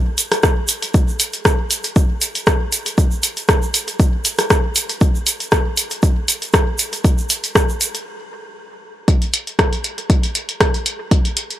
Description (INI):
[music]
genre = techno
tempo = 118 BPM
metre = 4/4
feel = swing 54% on 16ths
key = none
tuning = none
[part]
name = deep house drum kit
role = drums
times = 0.2-11.6 s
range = hi-hat, rim click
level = -19 LUFS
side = equal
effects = none
[part]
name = egg shaker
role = percussion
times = 0.2-8.0 s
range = none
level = -22 LUFS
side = right 3 dB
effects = none
[part]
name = electronic kick drum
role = drums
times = 0.4-11.2 s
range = none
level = -15 LUFS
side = equal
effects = none
[sound]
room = little or no reverb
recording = dry, gritty hardware recording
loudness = -15 LUFS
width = side -13 dB against mid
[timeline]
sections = 0.0-9.1 A section; 9.1-11.6 A section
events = stop 8.1-9.1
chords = none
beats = 0.43 | 0.94 1.45 1.96 2.47 | 2.98 3.49 4.00 4.50 | 5.01 5.52 6.03 6.54 | 7.05 7.55 8.06 8.57 | 9.08 9.59 10.10 10.61 | 11.11